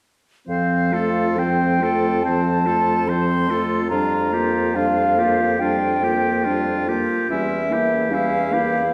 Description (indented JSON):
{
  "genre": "classical, slow romantic movement for wind quintet",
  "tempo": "71 BPM",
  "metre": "4/4",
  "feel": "rubato",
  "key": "F major",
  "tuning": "A4 = 439 Hz",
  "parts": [
    { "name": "mellow concert flute", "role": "melody", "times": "0.5-8.9 s", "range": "E5 to C6", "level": "-24 LUFS", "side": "equal", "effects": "none" },
    { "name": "clear oboe", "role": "second line", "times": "0.5-8.8 s", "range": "E4 to C5", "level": "-28 LUFS", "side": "equal", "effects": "none" },
    { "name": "bright clarinet", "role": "accompaniment", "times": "0.5-8.9 s", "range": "C4 to F4", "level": "-27 LUFS", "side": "equal", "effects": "none" },
    { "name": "mellow French horn", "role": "accompaniment", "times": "0.5-8.8 s", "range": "F3 to Bb3", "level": "-28 LUFS", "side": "equal", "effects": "none" },
    { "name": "mellow bassoon", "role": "bass", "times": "0.5-8.9 s", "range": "E2 to F2", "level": "-28 LUFS", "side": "equal", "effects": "none" }
  ],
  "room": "wet recital hall reverb, RT60 1.6 s",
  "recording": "recorded in a church or concert hall",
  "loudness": "-20 LUFS",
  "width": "mono",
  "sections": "0.5-8.9 A section",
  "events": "none",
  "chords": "0.5 F; 3.9 Gm7/F; 7.3 Edim7"
}